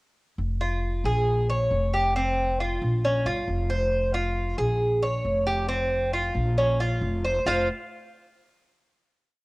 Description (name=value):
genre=latin, Cuban son and guajira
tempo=136 BPM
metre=4/4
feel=straight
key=F minor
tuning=A4 = 440 Hz
part: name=upright bass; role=bass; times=0.4-7.7 s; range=F1 to Bb1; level=-26 LUFS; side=equal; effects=none
part: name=Cuban tres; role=arpeggios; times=0.6-7.7 s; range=C4 to F5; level=-25 LUFS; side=equal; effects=cassette tape
room=moderate spring reverb, RT60 1.7 s, small room ambience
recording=home recording on cassette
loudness=-23 LUFS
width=side -23 dB against mid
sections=0.4-7.5 montuno (vamp); 7.5-9.2 final chord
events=none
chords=0.4 Fm; 1.3 Bbm7; 2.2 F5; 3.0 Bbm; 3.9 Fm; 4.8 Bbm7; 5.7 F5; 6.6 Bbm; 7.5 F5